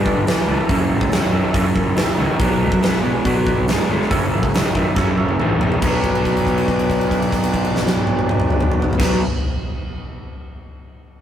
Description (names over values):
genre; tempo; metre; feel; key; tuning
blues rock power trio and southern rock; 140 BPM; 4/4; straight; B minor; A4 = 442 Hz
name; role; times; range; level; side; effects
raw garage guitar; riff; 0.0-9.2 s; F#2 to B3; -20 LUFS; equal; overdrive
fuzz picked electric bass; bass; 0.0-9.2 s; F#1 to B2; -22 LUFS; equal; overdrive
percussive tonewheel organ; sustained chords; 0.1-9.2 s; D4 to E5; -27 LUFS; right 3 dB; slow rotary speaker
huge arena drum kit; drums; 0.1-9.1 s; crash cymbal, hi-hat, kick drum, snare drum, toms; -20 LUFS; equal; none
room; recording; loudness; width
moderate stone room reverb, RT60 1.0 s; rough rehearsal-room recording, warm saturation; -16 LUFS; side -10 dB against mid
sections
0.0-5.8 A section; 5.8-9.3 B section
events
drum fill 5.0-5.8; held note 5.8-9.0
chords
0.0 G7; 0.7 F#7#9; 2.4 Bm; 4.1 F#7#9; 5.8 Bm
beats
0.27 | 0.70 1.12 1.55 1.98 | 2.40 2.83 3.26 3.69 | 4.11 4.54 4.97 5.40 | 5.82 6.25 6.68 7.11 | 7.54 7.97 8.39 8.82